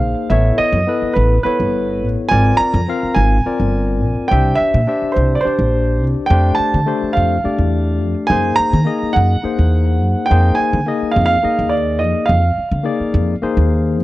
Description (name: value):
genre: electric jazz fusion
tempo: 210 BPM (eighths)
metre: 7/8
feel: straight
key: F dorian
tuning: A4 = 438 Hz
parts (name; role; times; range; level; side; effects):
- warm grand piano; melody; 0.0-13.9 s; B4 to Bb5; -18 LUFS; right 3 dB; none
- barky tine electric piano; accompaniment; 0.0-14.0 s; A3 to F5; -20 LUFS; left 5 dB; medium stereo tremolo
- upright bass; bass; 0.0-14.0 s; G1 to Eb3; -16 LUFS; equal; none
room: little or no reverb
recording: dry, close 1970s-style studio recording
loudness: -13 LUFS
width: side -16 dB against mid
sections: 0.0-14.0 A section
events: none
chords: 0.3 A9; 2.3 Abmaj7; 4.3 C7; 6.3 Fmaj7; 8.3 Gb13; 10.3 Fm7